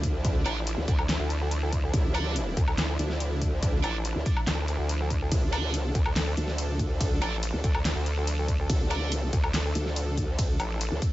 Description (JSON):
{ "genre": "heavy wobble dubstep", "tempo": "142 BPM", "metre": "4/4", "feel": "half-time", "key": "D minor", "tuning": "A4 = 440 Hz", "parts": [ { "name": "supersaw pad", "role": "sustained chords", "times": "0.0-11.1 s", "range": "F3 to A4", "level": "-36 LUFS", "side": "right 1 dB", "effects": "sidechain pumping" }, { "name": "growl bass", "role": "bass", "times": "0.0-11.0 s", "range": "D2", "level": "-28 LUFS", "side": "equal", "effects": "chorus, overdrive" }, { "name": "big-room dance drum kit", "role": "drums", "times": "0.0-11.1 s", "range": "handclaps, hi-hat, ride cymbal, snare drum, woodblock", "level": "-33 LUFS", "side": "left 1 dB", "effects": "studio reverb" }, { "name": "electronic kick drum", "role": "drums", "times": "0.0-11.1 s", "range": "none", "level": "-27 LUFS", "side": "equal", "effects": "studio reverb" }, { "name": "distorted electric guitar", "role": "stabs", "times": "0.5-9.1 s", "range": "D4 to D5", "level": "-37 LUFS", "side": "right 5 dB", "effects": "overdrive, digital delay" }, { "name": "vowel-sweep wobble bass", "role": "bass", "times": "0.5-10.9 s", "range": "A1 to D2", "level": "-28 LUFS", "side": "equal", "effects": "chorus, overdrive" } ], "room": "little or no reverb", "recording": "nothing above 7.8 kHz", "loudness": "-25 LUFS", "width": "side -16 dB against mid", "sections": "0.0-11.1 A section", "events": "none", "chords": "0.0 Dmadd9" }